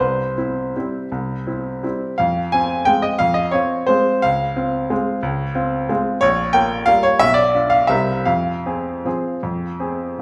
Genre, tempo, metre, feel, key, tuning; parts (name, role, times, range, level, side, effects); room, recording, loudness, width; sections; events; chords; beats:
classical, piano waltz; 151-189 BPM; 3/4; rubato; F minor; A4 = 439 Hz
clear baby grand piano; solo; 0.0-10.2 s; Bb1 to Ab5; -19 LUFS; equal
wet recital hall reverb, RT60 1.4 s; recorded in a church or concert hall; -19 LUFS; mono
0.0-10.2 A section
0.0 C; 2.2 Fm; 4.2 Dbmaj7; 6.2 Gm7b5/Bb; 7.2 Bdim; 7.9 C7; 8.3 Fm
| 0.00 0.37 0.75 | 1.11 1.47 1.84 | 2.19 2.53 2.87 | 3.20 3.54 3.88 | 4.24 4.57 4.91 | 5.24 5.56 5.89 | 6.22 6.54 6.88 | 7.21 7.54 7.89 | 8.27 8.65 9.05 | 9.43 9.80 10.19